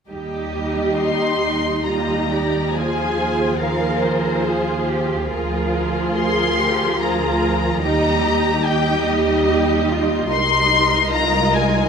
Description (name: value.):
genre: classical, slow romantic movement for string orchestra.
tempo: 66-74 BPM.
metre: 3/4.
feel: rubato.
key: Eb major.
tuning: A4 = 440 Hz.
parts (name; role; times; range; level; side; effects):
warm studio violin section; second line; 0.1-11.9 s; G4 to Eb5; -24 LUFS; left 2 dB; none.
warm studio viola section; accompaniment; 0.1-11.9 s; F3 to F4; -22 LUFS; right 2 dB; none.
rich studio double bass section; bass; 0.1-11.9 s; C2 to Eb2; -24 LUFS; right 2 dB; none.
warm symphonic cello section; bass; 0.1-11.9 s; Eb4 to Bb4; -25 LUFS; right 2 dB; none.
warm studio violin section; melody; 1.0-11.9 s; C5 to C6; -21 LUFS; left 5 dB; none.
room: moderate scoring stage reverb, RT60 1.6 s.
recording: minimal, uncompressed stereo recording.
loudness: -16 LUFS.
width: side -6 dB against mid.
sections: 0.1-11.9 A section.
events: none.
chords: 0.1 Eb; 2.8 Fm7/Eb; 5.3 Bb7/D; 7.8 Eb; 10.3 Cm7.